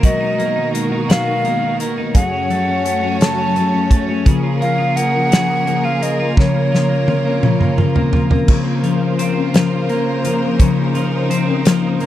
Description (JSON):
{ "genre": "six-eight pop ballad", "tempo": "57 BPM (dotted quarters)", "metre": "6/8", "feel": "straight", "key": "unclear", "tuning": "A4 = 440 Hz", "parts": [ { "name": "mellow hollow tenor recorder", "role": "melody", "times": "0.0-7.7 s", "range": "Db5 to A5", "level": "-19 LUFS", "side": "right 1 dB", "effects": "slapback echo" }, { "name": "twelve-string electric guitar", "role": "accompaniment", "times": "0.0-12.1 s", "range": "Gb2 to Ab4", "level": "-19 LUFS", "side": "right 1 dB", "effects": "none" }, { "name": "rich studio string section", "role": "sustained chords", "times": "0.0-12.1 s", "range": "Cb3 to Db5", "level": "-22 LUFS", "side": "left 1 dB", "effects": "none" }, { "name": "picked steel-string acoustic guitar", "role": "arpeggios", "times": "0.0-12.1 s", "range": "Gb2 to Bb4", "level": "-22 LUFS", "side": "left 8 dB", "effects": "none" }, { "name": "loose indie drum kit", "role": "drums", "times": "0.0-12.1 s", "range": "crash cymbal, hi-hat, kick drum, snare drum, toms", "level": "-14 LUFS", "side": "equal", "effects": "none" } ], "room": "little or no reverb", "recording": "dry, close 1970s-style studio recording", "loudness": "-14 LUFS", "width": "side -12 dB against mid", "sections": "0.0-8.5 A section; 8.5-12.1 B section", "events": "drum fill 6.4-8.5", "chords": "0.0 Cbmaj7; 2.1 Gbmadd9; 4.3 Db6; 6.4 Bbmadd9/Db" }